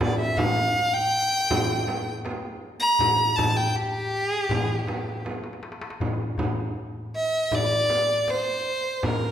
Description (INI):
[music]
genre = Arabic maqam ensemble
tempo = 80 BPM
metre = 4/4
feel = straight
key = G maqam rast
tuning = A4 = 439 Hz
[part]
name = rich violin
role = melody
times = 0.0-9.3 s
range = G4 to Bb5+47c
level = -23 LUFS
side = equal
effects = none
[part]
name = darbuka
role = percussion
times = 0.0-9.2 s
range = none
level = -30 LUFS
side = left 2 dB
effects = none
[part]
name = frame drum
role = percussion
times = 0.0-9.2 s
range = none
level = -29 LUFS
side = right 1 dB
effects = none
[sound]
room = wet recital hall reverb, RT60 1.8 s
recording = recorded in a church or concert hall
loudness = -22 LUFS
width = side -10 dB against mid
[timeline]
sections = 0.0-6.0 A section; 6.0-9.3 B section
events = drum fill 5.3-6.0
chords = none